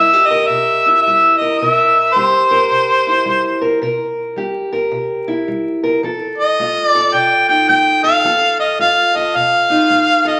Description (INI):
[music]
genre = acoustic country blues, solo or duo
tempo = 108 BPM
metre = 4/4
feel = swing 63% on 8ths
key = C mixolydian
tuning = A4 = 439 Hz
[part]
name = mellow harmonica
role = melody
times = 0.0-10.4 s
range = C5 to G5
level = -14 LUFS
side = equal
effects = none
[part]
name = fingerpicked steel-string acoustic guitar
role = accompaniment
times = 0.0-10.4 s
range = C3 to Bb4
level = -22 LUFS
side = equal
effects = none
[sound]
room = wet large studio reverb, RT60 1.3 s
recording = vinyl crackle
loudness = -14 LUFS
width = mono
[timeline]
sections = 0.0-10.4 A section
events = none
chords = 0.0 C7; 6.0 F7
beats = 0.49 1.05 | 1.60 2.15 2.71 3.26 | 3.81 4.36 4.92 5.47 | 6.03 6.58 7.13 7.69 | 8.24 8.79 9.35 9.90